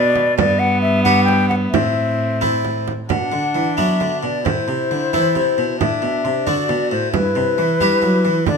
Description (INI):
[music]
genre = classical, renaissance-style consort dance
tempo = 89 BPM (dotted quarters)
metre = 6/8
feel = straight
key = unclear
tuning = A4 = 439 Hz
[part]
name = mellow hollow silver concert flute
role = melody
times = 0.0-8.6 s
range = B4 to G5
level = -20 LUFS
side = left 3 dB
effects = none
[part]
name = harpsichord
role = accompaniment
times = 0.0-8.6 s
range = G2 to B4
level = -20 LUFS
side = equal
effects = none
[part]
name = warm viola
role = accompaniment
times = 0.0-8.6 s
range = B3 to F#4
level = -24 LUFS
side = left 1 dB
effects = none
[part]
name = rich cello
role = bass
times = 0.0-8.6 s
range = G2 to G3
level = -23 LUFS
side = right 2 dB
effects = none
[part]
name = frame drum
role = percussion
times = 0.2-8.6 s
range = none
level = -23 LUFS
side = right 8 dB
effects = none
[sound]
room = wet stone room reverb, RT60 1.0 s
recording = none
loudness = -15 LUFS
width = side -5 dB against mid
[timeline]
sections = 0.0-3.1 A section; 3.1-8.6 B section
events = none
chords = 0.4 G; 1.7 Am; 3.1 Bm; 4.5 Am; 5.8 D/A; 7.1 G